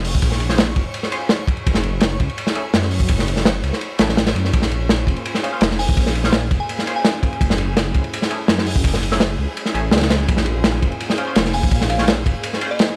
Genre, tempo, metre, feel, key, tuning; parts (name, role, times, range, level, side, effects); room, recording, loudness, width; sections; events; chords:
drum and bass, jungle; 167 BPM; 4/4; straight; Bb minor; A4 = 438 Hz
dark detuned saw bass; bass; 0.0-12.3 s; F1 to Gb2; -24 LUFS; equal
crunchy breakbeat drum kit; drums; 0.0-12.9 s; hi-hat, kick drum, ride cymbal, snare drum; -20 LUFS; equal
twinkling granular texture; texture; 0.0-13.0 s; Ab4 to Db6; -37 LUFS; equal; built-in reverb
band-passed chord stab; stabs; 0.5-12.7 s; A3 to C5; -31 LUFS; equal; phaser, lush chorus, cassette tape, dub echo
soft string machine; sustained chords; 4.7-13.0 s; Bb3 to C5; -33 LUFS; equal
glassy synth bell; melody; 5.8-7.4, 11.5-13.0 s; Eb5 to Ab5; -30 LUFS; equal; chorus, tremolo, vintage 12-bit sampler grit, dub echo
small room ambience; dry, gritty hardware recording, vinyl crackle; -19 LUFS; mono
0.0-13.0 A section
0.0 Bbm9; 1.7 Gbm; 4.5 Bbm9; 7.4 Gbm9; 10.3 Bbm9